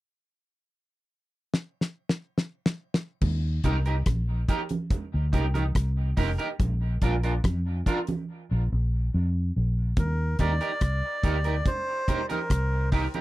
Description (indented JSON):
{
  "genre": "roots reggae",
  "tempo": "71 BPM",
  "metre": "4/4",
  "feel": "straight",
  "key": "Eb major",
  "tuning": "A4 = 444 Hz",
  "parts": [
    { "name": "damped 70s drum kit", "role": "drums", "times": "1.5-13.2 s", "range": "crash cymbal, hi-hat, kick drum, rim click, snare drum", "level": "-25 LUFS", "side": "equal", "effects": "none" },
    { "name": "vintage muted fingered electric bass", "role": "bass", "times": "3.2-13.1 s", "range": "F1 to F2", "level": "-25 LUFS", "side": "equal", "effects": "none" },
    { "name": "congas", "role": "percussion", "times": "3.2-13.2 s", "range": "none", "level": "-34 LUFS", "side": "right 3 dB", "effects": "none" },
    { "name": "electric guitar at the edge of break-up", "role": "accompaniment", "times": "3.6-13.2 s", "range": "D4 to Bb4", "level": "-32 LUFS", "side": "right 3 dB", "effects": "lush chorus, tape echo" },
    { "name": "melodica", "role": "melody", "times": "10.0-12.9 s", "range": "Bb4 to D5", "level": "-30 LUFS", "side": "equal", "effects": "tape echo" }
  ],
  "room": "little or no reverb",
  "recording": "dry, close 1970s-style studio recording",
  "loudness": "-24 LUFS",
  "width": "side -17 dB against mid",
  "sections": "0.0-3.2 A section; 3.2-10.0 B section; 10.0-13.2 C section",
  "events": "drum fill 1.5-3.2; drums muted 8.3-10.0",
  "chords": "0.0 N.C.; 3.2 Eb; 6.6 Bb5; 10.0 Eb",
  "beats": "0.68 1.52 2.37 | 3.21 4.06 4.90 5.75 | 6.59 7.44 8.28 9.13 | 9.97 10.82 11.66 12.50"
}